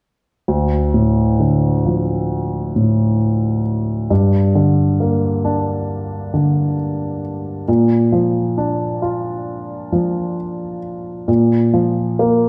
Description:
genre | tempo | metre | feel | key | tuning
pop | 67 BPM | 4/4 | straight | D minor | A4 = 440 Hz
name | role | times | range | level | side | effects
warm concert grand piano | accompaniment | 0.5-12.5 s | D2 to F4 | -18 LUFS | equal | none
room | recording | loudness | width
wet recital hall reverb, RT60 1.4 s | dark, warm production | -18 LUFS | mono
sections
0.5-12.5 A section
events
none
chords
0.5 Dm; 4.1 Gm; 7.7 Bb

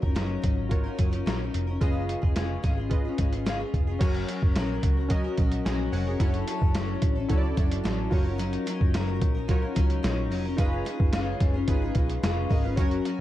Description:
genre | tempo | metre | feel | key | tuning
indie pop, bedroom pop | 110 BPM | 4/4 | straight | F# major | A4 = 439 Hz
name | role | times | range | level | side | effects
picked steel-string acoustic guitar | accompaniment | 0.0-13.2 s | C#3 to A#4 | -31 LUFS | left 4 dB | analog chorus, warbly pitch drift
warm analog keys | accompaniment | 0.0-13.2 s | C#4 to G#5 | -34 LUFS | right 3 dB | chorus, cassette tape
vintage muted picked electric bass | bass | 0.0-13.0 s | E#1 to C#2 | -30 LUFS | equal | none
lo-fi sampler-style drum kit | drums | 0.0-13.2 s | crash cymbal, hi-hat, kick drum, snare drum | -26 LUFS | equal | none
room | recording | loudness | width
little or no reverb | dark, warm production | -24 LUFS | side -14 dB against mid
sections
0.0-4.0 A section; 4.0-13.2 B section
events
none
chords
0.0 D#m7/F#; 1.8 C#7; 4.0 F#; 6.2 Dmaj7/F#; 8.1 D#m7/F#; 10.6 C#7/F#

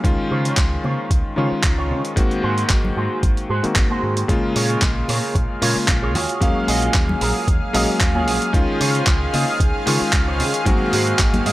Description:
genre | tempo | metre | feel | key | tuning
nu-disco, nu disco | 113 BPM | 4/4 | swing 53% on 16ths | unclear | A4 = 440 Hz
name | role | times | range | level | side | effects
warm electric grand piano | accompaniment | 0.0-11.5 s | Db3 to F5 | -22 LUFS | left 2 dB | tape echo
deep dub fingered electric bass | bass | 0.0-11.5 s | Ab1 to Db3 | -23 LUFS | equal | none
dusty soul sampler-style drum kit | drums | 0.0-11.5 s | handclaps, hi-hat | -23 LUFS | right 1 dB | overdrive
electronic kick drum | drums | 0.0-11.3 s | none | -19 LUFS | equal | overdrive
electric guitar with an envelope filter | riff | 0.3-11.5 s | F4 to Eb5 | -26 LUFS | right 3 dB | ensemble chorus, low-pass filter
congas | percussion | 0.8-11.5 s | none | -28 LUFS | left 2 dB | none
lush unison pad | sustained chords | 4.3-11.5 s | Ab4 to F5 | -25 LUFS | equal | chorus, sidechain pumping
room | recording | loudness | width
light reverb, digital ambience | none | -16 LUFS | side -16 dB against mid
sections
0.0-11.5 A section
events
clean electric guitar fill 11.2-11.5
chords
0.0 Dbmaj7; 2.2 Ab7; 4.3 Bbm7; 6.2 Ebm11; 8.5 Dbmaj7; 10.7 Ab7

